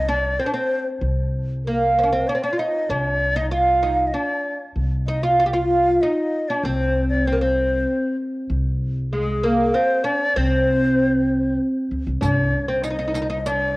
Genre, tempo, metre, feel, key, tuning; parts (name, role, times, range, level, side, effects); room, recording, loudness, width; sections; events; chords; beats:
Arabic maqam ensemble; 96 BPM; 3/4; straight; C maqam bayati; A4 = 440 Hz
oud; melody; 0.0-13.8 s; Ab3 to G4; -21 LUFS; equal; cassette tape
breathy bright low ney; second line; 0.0-13.8 s; Ab4 to F5; -24 LUFS; left 1 dB
upright bass; bass; 0.0-12.5 s; C2 to D2-50c; -24 LUFS; equal
warm double bass; drone; 12.2-13.8 s; C2; -30 LUFS; equal; stereo widening
darbuka; percussion; 12.2-13.7 s; -28 LUFS; equal
riq; percussion; 12.2-13.6 s; -33 LUFS; right 2 dB
wet spring reverb, RT60 2.0 s; home recording on cassette; -18 LUFS; side -21 dB against mid
0.0-12.2 A section; 12.2-13.8 B section
0.39 | 1.02 1.64 2.27 | 2.89 3.52 4.14 | 4.76 5.38 6.01 | 6.63 7.25 7.88 | 8.50 9.12 9.74 | 10.36 10.98 11.60 | 12.22 12.84 13.46